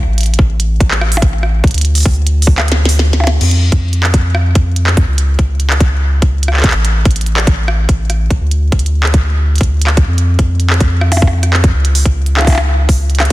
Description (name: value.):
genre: IDM.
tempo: 144 BPM.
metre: 4/4.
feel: straight.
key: unclear.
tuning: A4 = 440 Hz.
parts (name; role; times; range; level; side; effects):
round analog bass; bass; 0.0-13.3 s; A1 to F2; -12 LUFS; equal; none.
glitchy drum kit; drums; 0.2-13.3 s; crash cymbal, handclaps, hi-hat, percussion blips, rim click, snare drum; -17 LUFS; equal; studio reverb, ping-pong delay.
electronic kick drum; drums; 0.4-13.0 s; none; -10 LUFS; equal; studio reverb.
room: little or no reverb.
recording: dense, heavily limited modern master.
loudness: -10 LUFS.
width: side -17 dB against mid.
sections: 0.0-3.4 A section; 3.4-13.3 B section.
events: kick drops out 2.6-3.4; drum fill 2.6-3.4.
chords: none.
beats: | 0.08 0.49 0.91 1.33 | 1.74 2.16 2.58 2.99 | 3.41 3.83 4.24 4.66 | 5.08 5.49 5.91 6.33 | 6.74 7.16 7.58 7.99 | 8.41 8.83 9.24 9.66 | 10.08 10.49 10.91 11.33 | 11.74 12.16 12.58 12.99.